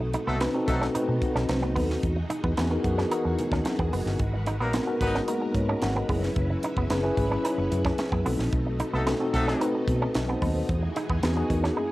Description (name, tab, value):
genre	polished 1980s jazz-funk pop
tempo	111 BPM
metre	4/4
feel	straight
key	unclear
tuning	A4 = 440 Hz
part	mellow tine electric piano	accompaniment	0.0-11.9 s	F#2 to A5	-28 LUFS	left 1 dB	fast stereo tremolo, analog chorus
part	string machine, full ensemble	sustained chords	0.0-11.9 s	B2 to B4	-36 LUFS	equal	ensemble chorus
part	electric guitar with an envelope filter	riff	0.0-11.8 s	B3 to D#4	-32 LUFS	right 2 dB	lush chorus
part	vintage muted fingered electric bass	bass	0.0-11.7 s	F#1 to B2	-28 LUFS	equal	none
part	crisp fusion drum kit	drums	0.1-11.7 s	hi-hat, kick drum, snare drum	-31 LUFS	equal	cassette tape
part	congas	percussion	0.1-11.6 s	none	-42 LUFS	left 1 dB	none
part	warm horn section	second line	0.3-0.8, 4.6-5.2, 8.9-9.7 s	F#3 to B4	-30 LUFS	left 1 dB	none
room	moderate small room reverb, RT60 0.6 s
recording	home recording on cassette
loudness	-24 LUFS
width	side -18 dB against mid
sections	0.0-11.9 A section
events	none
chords	0.0 B7b9; 2.0 Emaj9; 4.2 G#m9; 6.1 F#7sus4; 8.3 B7b9; 10.7 Emaj9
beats	0.41 0.95 1.49 | 2.03 2.58 3.12 3.66 | 4.20 4.74 5.28 5.82 | 6.36 6.90 7.45 7.99 | 8.53 9.07 9.61 10.15 | 10.69 11.23 11.77